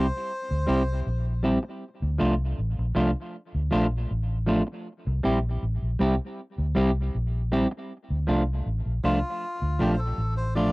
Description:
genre	roots reggae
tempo	79 BPM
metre	4/4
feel	straight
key	D minor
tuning	A4 = 441 Hz
part	melodica	melody	0.0-1.0, 9.0-10.7 s	F4 to D5	-32 LUFS	left 1 dB	cassette tape, tape echo
part	semi-hollow electric guitar	accompaniment	0.0-10.7 s	F3 to G4	-26 LUFS	equal	cassette tape, tape echo
part	vintage muted fingered electric bass	bass	0.0-10.7 s	A1 to D2	-26 LUFS	equal	none
room	moderate booth ambience, RT60 0.2 s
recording	home recording on cassette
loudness	-24 LUFS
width	side -23 dB against mid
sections	0.0-7.9 A section; 7.9-10.7 B section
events	melodica solo 7.9-10.7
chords	0.0 C; 1.8 Dm; 4.9 C; 7.9 Dm

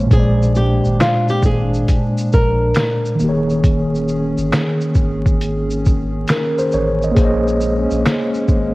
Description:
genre	lo-fi hip hop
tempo	68 BPM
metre	4/4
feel	swing 66% on 16ths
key	unclear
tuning	A4 = 440 Hz
part	flamenco guitar	melody	0.0-3.6 s	F4 to Bb4	-20 LUFS	equal	cassette tape
part	mellow tine electric piano	accompaniment	0.0-8.7 s	Bb2 to Eb5	-17 LUFS	equal	medium stereo tremolo
part	hollow soft pad	sustained chords	0.0-8.7 s	Eb3 to Ab4	-26 LUFS	equal	chorus
part	soft dub sub bass	bass	0.0-8.7 s	Eb1 to Bb1	-23 LUFS	equal	transformer saturation
part	lo-fi sampler-style drum kit	drums	0.1-8.7 s	finger snaps, hi-hat, kick drum, shaker, snare drum	-16 LUFS	equal	cassette tape
room	light reverb, digital ambience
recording	home recording on cassette, vinyl crackle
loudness	-14 LUFS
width	side -20 dB against mid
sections	0.0-8.7 A section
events	none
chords	0.1 Bb9; 3.2 Eb7sus4; 7.2 Bbm11

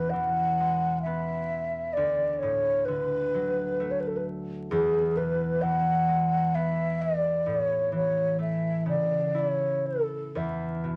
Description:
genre	celtic folk, Celtic slow air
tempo	65 BPM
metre	3/4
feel	rubato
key	E mixolydian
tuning	A4 = 440 Hz
part	mellow hollow wooden flute	melody	0.0-10.9 s	G#4 to F#5	-28 LUFS	equal	none
part	concert harp	accompaniment	0.0-11.0 s	D2 to E5	-32 LUFS	equal	none
room	moderate studio reverb, RT60 0.6 s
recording	vinyl crackle, nothing above 10.7 kHz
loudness	-27 LUFS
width	mono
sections	0.0-11.0 A section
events	none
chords	0.0 E; 2.0 D; 4.7 E; 7.5 A; 10.3 E5

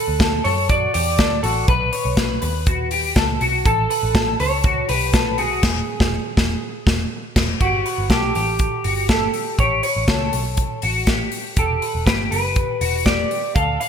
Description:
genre	jangly indie pop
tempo	121 BPM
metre	4/4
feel	straight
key	A mixolydian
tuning	A4 = 441 Hz
part	electric guitar through a small old amp	melody	0.0-13.9 s	F#4 to F5	-23 LUFS	right 1 dB	lush chorus
part	electric guitar through a small old amp	arpeggios	0.0-13.9 s	F#4 to C#5	-24 LUFS	left 4 dB	analog chorus
part	vintage muted picked electric bass	bass	0.1-13.8 s	E1 to F#2	-24 LUFS	right 1 dB	none
part	modern studio drum kit	drums	0.2-13.9 s	crash cymbal, hi-hat, kick drum, snare drum	-20 LUFS	equal	gated reverb
room	light reverb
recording	bright 1980s-style digital production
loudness	-17 LUFS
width	side -7 dB against mid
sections	0.0-7.6 A section; 7.6-13.9 B section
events	band accent 5.6-7.6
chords	0.0 D; 1.7 B; 3.7 Asus2; 5.6 E; 7.6 Gsus2; 9.6 A7; 11.6 Em7

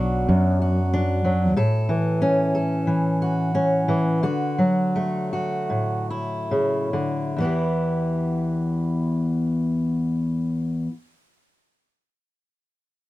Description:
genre	folk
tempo	67-94 BPM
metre	4/4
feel	straight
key	E dorian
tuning	A4 = 438 Hz
part	fingerpicked steel-string acoustic guitar	accompaniment	0.0-10.9 s	E2 to A4	-21 LUFS	equal	none
part	sustaining fretless electric bass	bass	0.0-1.5 s	B1 to F#2	-22 LUFS	right 1 dB	none
room	light reverb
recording	close, detailed microphones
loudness	-20 LUFS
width	side -16 dB against mid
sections	0.0-7.4 A section; 7.4-10.9 B section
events	slowing down 1.6-7.4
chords	0.0 Bm; 1.6 A; 4.2 D; 7.4 Em

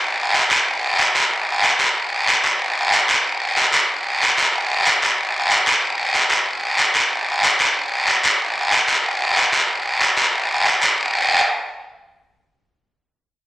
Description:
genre	latin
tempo	186 BPM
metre	4/4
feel	straight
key	none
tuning	none
part	guiro	percussion	0.0-11.1 s	none	-15 LUFS	equal	none
room	moderate large studio reverb, RT60 1.1 s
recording	worn, warbling old tape, cassette tape, warbly pitch drift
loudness	-15 LUFS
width	side -17 dB against mid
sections	0.7-11.0 A section; 11.0-12.3 B section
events	none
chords	none

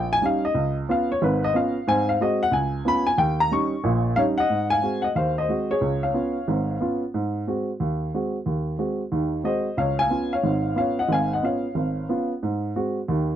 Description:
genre	jazz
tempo	182 BPM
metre	4/4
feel	swing 64% on 8ths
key	Ab mixolydian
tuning	A4 = 439 Hz
part	warm upright piano	solo	0.0-13.4 s	Ab1 to Db6	-21 LUFS	equal	none
room	light reverb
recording	dry, close 1970s-style studio recording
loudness	-21 LUFS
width	side -10 dB against mid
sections	0.0-4.5 A section; 4.5-13.4 B section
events	upright piano solo 0.0-4.5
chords	0.0 Eb7; 0.5 Db7; 1.9 Ab7; 2.5 Db7; 3.2 Eb7; 4.5 Ab7; 5.8 Db7; 7.1 Ab7; 9.8 Db7; 12.4 Ab7

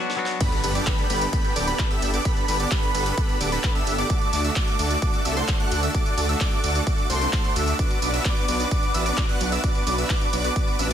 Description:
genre	EDM, festival progressive house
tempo	130 BPM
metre	4/4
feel	straight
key	G major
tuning	A4 = 439 Hz
part	big-room dance drum kit	drums	0.1-10.9 s	crash cymbal, handclaps, hi-hat, snare drum, tambourine	-30 LUFS	equal	high-pass filter on snare, studio reverb, high-pass filter on hats, high-pass filter on perc, high-pass filter on cymbals
part	lush unison pad	sustained chords	0.4-10.9 s	A4 to D6	-32 LUFS	right 2 dB	chorus, sidechain pumping
part	wide unison lead	arpeggios	0.4-10.9 s	B5 to F#6	-29 LUFS	equal	lush chorus, sidechain pumping, ping-pong delay
part	supersaw chords	riff	0.4-10.9 s	A3 to F#5	-27 LUFS	right 1 dB	sidechain pumping, ping-pong delay
part	electronic kick drum	drums	0.4-10.7 s	none	-24 LUFS	equal	high-pass filter on kick, studio reverb
part	impact	sound effects	0.4-2.3 s	none	-36 LUFS	equal	none
part	wide detuned saw bass	bass	0.6-10.9 s	D1 to D2	-26 LUFS	equal	chorus, sidechain pumping, high-pass filter
room	little or no reverb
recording	dense, heavily limited modern master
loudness	-20 LUFS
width	side -9 dB against mid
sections	0.4-10.9 A section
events	break 0.0-0.4; drum fill 0.0-0.4; drop 0.4-10.9; impact 0.4-2.3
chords	0.4 Gadd9; 4.1 D; 7.8 Bm

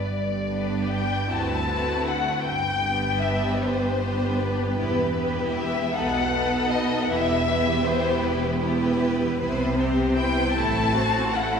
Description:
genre	classical, slow romantic movement for string orchestra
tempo	52 BPM (dotted quarters)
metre	6/8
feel	rubato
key	G major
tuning	A4 = 441 Hz
part	dark studio violin section	melody	0.0-11.6 s	B4 to A5	-26 LUFS	left 4 dB	none
part	rich studio violin section	second line	0.0-11.6 s	E4 to C5	-30 LUFS	left 2 dB	none
part	clear studio double bass section	bass	0.1-11.6 s	E1 to D2	-29 LUFS	right 2 dB	none
part	rich studio cello section	bass	0.1-11.6 s	D2 to C3	-30 LUFS	right 2 dB	none
part	clear studio viola section	accompaniment	0.5-11.6 s	A3 to F#4	-28 LUFS	right 1 dB	none
room	wet concert hall reverb, RT60 2.4 s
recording	recorded in a church or concert hall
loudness	-21 LUFS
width	side -6 dB against mid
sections	0.1-11.6 A section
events	none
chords	0.1 G; 1.3 D13; 2.5 G; 4.8 Em; 5.9 B7; 7.1 Em; 9.4 Cmaj7; 10.6 F#m7b5/A

